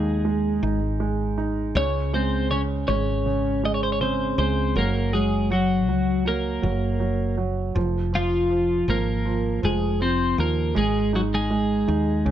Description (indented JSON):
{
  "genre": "pop ballad",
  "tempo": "80 BPM",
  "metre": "4/4",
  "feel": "straight",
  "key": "Db major",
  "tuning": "A4 = 440 Hz",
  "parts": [
    { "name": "twelve-string electric guitar", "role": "melody", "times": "0.0-12.3 s", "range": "F3 to Eb5", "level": "-24 LUFS", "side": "left 1 dB", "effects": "none" },
    { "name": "clear concert grand piano", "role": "accompaniment", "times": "0.0-12.3 s", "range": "Db3 to Eb4", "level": "-27 LUFS", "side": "right 5 dB", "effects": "none" },
    { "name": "woody fretless electric bass", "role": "bass", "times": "0.0-12.3 s", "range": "F1 to Eb2", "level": "-26 LUFS", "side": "left 1 dB", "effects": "none" }
  ],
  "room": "little or no reverb",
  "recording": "dry, close 1970s-style studio recording",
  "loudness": "-21 LUFS",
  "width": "side -11 dB against mid",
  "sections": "0.0-12.3 A section",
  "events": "none",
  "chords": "0.0 Ab5; 1.8 Db5; 4.8 Gb; 7.8 Fmadd11; 10.8 Ab5"
}